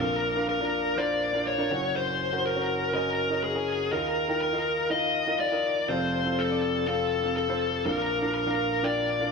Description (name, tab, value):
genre	pop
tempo	122 BPM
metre	4/4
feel	straight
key	Bb major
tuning	A4 = 440 Hz
part	bluesy overdriven lead guitar	melody	0.0-9.3 s	Ab4 to Eb5	-26 LUFS	left 3 dB	distortion
part	warm grand piano	accompaniment	0.0-9.3 s	F1 to Ab5	-29 LUFS	right 2 dB	none
room	moderate lush hall reverb, RT60 2.7 s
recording	none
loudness	-24 LUFS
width	side -4 dB against mid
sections	0.0-9.3 A section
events	none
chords	0.0 Bb; 1.7 Gb; 3.9 Ebsus2; 5.9 F; 7.9 Bb